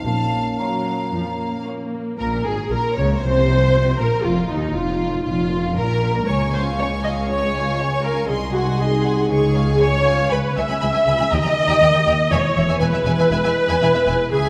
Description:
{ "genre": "classical, dramatic, fast romantic movement for symphony orchestra", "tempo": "118 BPM", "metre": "4/4", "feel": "rubato", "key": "Bb minor", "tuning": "A4 = 440 Hz", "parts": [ { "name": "bright symphonic violin section", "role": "melody", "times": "0.0-14.5 s", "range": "Eb4 to Db6", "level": "-33 LUFS", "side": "equal", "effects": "none" }, { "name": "mellow hollow concert flute", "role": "second line", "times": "0.0-1.7 s", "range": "A5 to Bb5", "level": "-29 LUFS", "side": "equal", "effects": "none" }, { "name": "mellow French horn section", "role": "sustained chords", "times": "0.0-1.9 s", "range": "Bb3 to Db4", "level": "-31 LUFS", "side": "equal", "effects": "none" }, { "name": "concert harp", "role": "arpeggios", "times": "0.0-14.5 s", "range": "A2 to A#4", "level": "-29 LUFS", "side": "equal", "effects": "none" }, { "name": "bright symphonic double bass section", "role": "bass", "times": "0.0-14.5 s", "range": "E1 to Eb2", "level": "-27 LUFS", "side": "equal", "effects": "none" }, { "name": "rich symphonic cello section", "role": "bass", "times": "0.1-14.5 s", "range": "C2 to Db3", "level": "-26 LUFS", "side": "equal", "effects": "none" }, { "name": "warm symphonic violin section", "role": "second line", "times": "0.6-14.5 s", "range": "Eb4 to Db6", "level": "-29 LUFS", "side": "equal", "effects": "none" }, { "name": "rich symphonic viola section", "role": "accompaniment", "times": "0.6-14.5 s", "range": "F3 to E5", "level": "-22 LUFS", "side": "equal", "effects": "none" } ], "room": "wet scoring stage reverb, RT60 1.8 s", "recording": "none", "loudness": "-19 LUFS", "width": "mono", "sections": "0.0-2.2 A section; 2.2-14.5 B section", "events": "none", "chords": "0.0 Bbm; 4.2 F7; 5.3 Bbm/F; 6.3 Db; 8.3 Ab7/C; 9.3 Db; 10.3 C#m7; 11.3 D#; 12.3 E" }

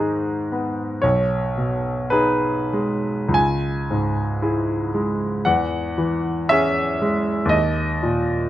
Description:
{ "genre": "classical, romantic nocturne for solo piano", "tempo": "46-60 BPM", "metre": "4/4", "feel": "rubato", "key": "G# minor", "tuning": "A4 = 440 Hz", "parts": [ { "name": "clear grand piano", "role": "solo", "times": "0.0-8.5 s", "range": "B1 to G#5", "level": "-19 LUFS", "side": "equal", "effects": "none" } ], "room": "light reverb", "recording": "none", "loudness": "-19 LUFS", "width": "side -13 dB against mid", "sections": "0.0-8.5 A section", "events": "none", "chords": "0.0 G#m; 1.0 G#m/B; 3.4 C#m; 5.5 C#m/E; 7.5 D#5" }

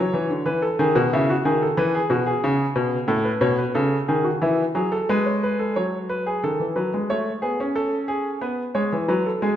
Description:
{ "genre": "classical, baroque-style two-part invention for grand piano", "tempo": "91 BPM", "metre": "4/4", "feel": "straight", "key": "A major", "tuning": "A4 = 440 Hz", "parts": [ { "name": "clear grand piano", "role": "solo", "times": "0.0-9.6 s", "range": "A2 to C#5", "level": "-20 LUFS", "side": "equal", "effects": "none" } ], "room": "wet recital hall reverb, RT60 1.7 s", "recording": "minimal, uncompressed stereo recording", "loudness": "-20 LUFS", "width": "side -10 dB against mid", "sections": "0.0-5.8 A section; 5.8-9.6 B section", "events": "none", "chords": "0.5 E; 3.1 A; 4.4 E; 5.8 B5/F#; 7.1 A; 8.4 F#m" }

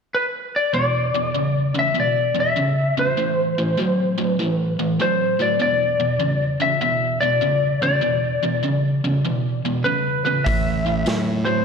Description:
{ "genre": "blues rock power trio and southern rock", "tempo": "99 BPM", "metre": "4/4", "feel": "swing 67% on 8ths", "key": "unclear", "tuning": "A4 = 439 Hz", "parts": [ { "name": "lightly driven lead guitar", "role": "melody", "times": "0.1-11.6 s", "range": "B4 to E5", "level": "-21 LUFS", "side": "left 2 dB", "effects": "slapback echo" }, { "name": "biting overdriven guitar", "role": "riff", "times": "0.7-11.6 s", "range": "E2 to F#3", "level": "-21 LUFS", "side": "right 1 dB", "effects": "none" }, { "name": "fuzz fingered electric bass", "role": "bass", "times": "10.5-11.6 s", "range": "A1 to A2", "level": "-24 LUFS", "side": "right 1 dB", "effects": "overdrive" }, { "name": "vintage drum kit", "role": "drums", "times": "10.5-11.3 s", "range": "hi-hat, kick drum, snare drum", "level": "-25 LUFS", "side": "right 1 dB", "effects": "none" } ], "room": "wet scoring stage reverb, RT60 1.8 s, studio reverb", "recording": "big arena sound", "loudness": "-18 LUFS", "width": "side -6 dB against mid", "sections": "0.8-11.6 A section", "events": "none", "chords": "0.0 N.C.; 0.8 E5; 3.2 Am; 5.6 E5; 10.5 A5" }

